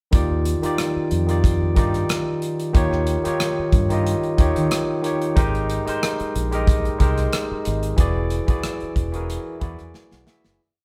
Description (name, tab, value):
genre	lush 1970s-style soul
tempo	92 BPM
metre	4/4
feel	swing 54% on 16ths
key	Eb major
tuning	A4 = 441 Hz
part	barky tine electric piano	accompaniment	0.1-10.6 s	Eb3 to B5	-25 LUFS	equal	overdrive
part	fingered electric bass	bass	0.1-10.6 s	E1 to Eb3	-26 LUFS	equal	none
part	modern studio drum kit	drums	0.1-10.6 s	hi-hat, kick drum, rim click, snare drum	-23 LUFS	equal	none
part	vibraphone with soft mallets	texture	6.4-10.6 s	Eb5 to Bb5	-41 LUFS	equal	none
room	moderate stone room reverb, RT60 1.2 s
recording	band playing live in one room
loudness	-21 LUFS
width	mono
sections	0.1-10.6 verse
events	fade-out 8.0-10.6; tine electric piano fill 9.3-10.6; drum fill 9.9-10.6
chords	0.1 Ebmaj9; 2.8 Eb7; 5.4 Abmaj9; 8.0 E9